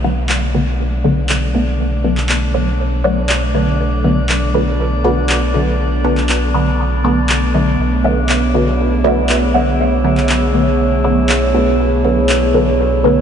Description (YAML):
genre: dub techno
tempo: 120 BPM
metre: 4/4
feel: straight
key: B dorian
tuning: A4 = 436 Hz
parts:
  - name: dark analog pad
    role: sustained chords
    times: 0.0-13.2 s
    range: B3 to D5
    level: -20 LUFS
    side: right 2 dB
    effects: chorus
  - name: filtered dub chord stab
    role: stabs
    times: 0.0-13.2 s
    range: D3 to B3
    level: -16 LUFS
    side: equal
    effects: phaser, dub echo
  - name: pure sine sub bass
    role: bass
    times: 0.0-13.2 s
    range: B1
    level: -17 LUFS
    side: equal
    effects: none
  - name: drifting glass-harmonics texture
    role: texture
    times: 0.4-13.2 s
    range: D4 to D5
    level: -25 LUFS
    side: left 1 dB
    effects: chorus, built-in reverb
  - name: electronic handclaps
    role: drums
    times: 0.3-12.4 s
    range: none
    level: -22 LUFS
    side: equal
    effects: none
room: wet cathedral reverb, RT60 6.2 s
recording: dreamy mix soaked in reverb, nothing above 10.7 kHz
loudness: -12 LUFS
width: side -8 dB against mid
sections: 0.0-13.2 A section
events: none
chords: 0.0 Bm7